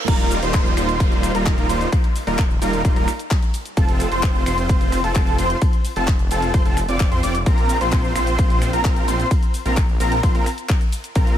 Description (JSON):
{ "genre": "EDM, festival progressive house", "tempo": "130 BPM", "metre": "4/4", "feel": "straight", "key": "unclear", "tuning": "A4 = 435 Hz", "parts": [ { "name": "reverse cymbal and downlifter", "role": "sound effects", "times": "0.0-3.8 s", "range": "none", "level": "-33 LUFS", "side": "right 1 dB", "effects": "none" }, { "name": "wide unison lead", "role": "arpeggios", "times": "0.1-11.4 s", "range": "A5 to D6", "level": "-25 LUFS", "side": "equal", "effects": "ensemble chorus, sidechain pumping, ping-pong delay" }, { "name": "supersaw chords", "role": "riff", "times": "0.1-11.4 s", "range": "G3 to D5", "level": "-24 LUFS", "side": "right 1 dB", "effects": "sidechain pumping, ping-pong delay" }, { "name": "detuned saw bass", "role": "bass", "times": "0.1-11.4 s", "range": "Eb1 to F2", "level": "-24 LUFS", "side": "equal", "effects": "sidechain pumping" }, { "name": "electronic kick drum", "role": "drums", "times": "0.1-11.2 s", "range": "none", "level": "-18 LUFS", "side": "equal", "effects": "overdrive" }, { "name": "house drum kit", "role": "drums", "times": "0.1-11.4 s", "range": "cabasa, crash cymbal, finger snaps, handclaps, hi-hat, ride cymbal", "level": "-30 LUFS", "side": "left 2 dB", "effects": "none" } ], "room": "digital ambience", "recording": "high-pass filter", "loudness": "-16 LUFS", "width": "side -11 dB against mid", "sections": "0.1-11.4 A section", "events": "drop 0.1-11.4", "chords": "0.1 Ebadd9; 3.8 F; 7.5 Bbsus2", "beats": "| 0.08 0.54 1.00 1.46 | 1.93 2.39 2.85 3.31 | 3.77 4.23 4.70 5.16 | 5.62 6.08 6.54 7.00 | 7.46 7.92 8.39 8.85 | 9.31 9.77 10.23 10.70 | 11.16" }